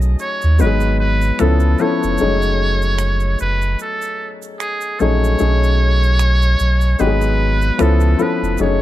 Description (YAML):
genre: R&B, neo-soul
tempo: 75 BPM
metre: 4/4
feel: swing 56% on 16ths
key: F# dorian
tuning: A4 = 440 Hz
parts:
  - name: warm upright piano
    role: accompaniment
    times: 0.0-8.8 s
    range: E#3 to A4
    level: -19 LUFS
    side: left 4 dB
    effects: plate reverb
  - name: warm sub bass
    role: bass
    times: 0.0-8.8 s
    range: E#1 to D#2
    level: -15 LUFS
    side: right 1 dB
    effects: none
  - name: egg shaker and finger snaps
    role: percussion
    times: 0.0-8.8 s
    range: none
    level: -32 LUFS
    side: right 12 dB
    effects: none
  - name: trumpet with metal mute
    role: melody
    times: 0.2-8.8 s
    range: G#4 to C#5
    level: -22 LUFS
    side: right 1 dB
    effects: plate reverb
room: light reverb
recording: dark, warm production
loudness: -14 LUFS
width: side -14 dB against mid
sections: 0.0-8.8 A section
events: none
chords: 0.0 B13; 0.6 G#m7; 1.4 C#7alt; 2.2 F#m69; 5.4 B13; 7.0 G#m7; 7.8 C#7alt